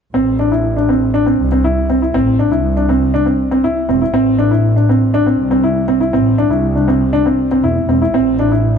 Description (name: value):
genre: piano and strings electronica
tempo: 120 BPM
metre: 4/4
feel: straight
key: A minor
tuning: A4 = 441 Hz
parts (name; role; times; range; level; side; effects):
- dark grand piano; riff; 0.1-8.7 s; C4 to E4; -13 LUFS; equal; ping-pong delay
- rich studio double bass section; bass; 0.1-8.8 s; E1 to C2; -17 LUFS; equal; none
room: moderate echo chamber reverb, RT60 2.0 s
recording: none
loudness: -12 LUFS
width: side -7 dB against mid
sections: 0.1-8.8 A section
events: none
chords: 0.1 Am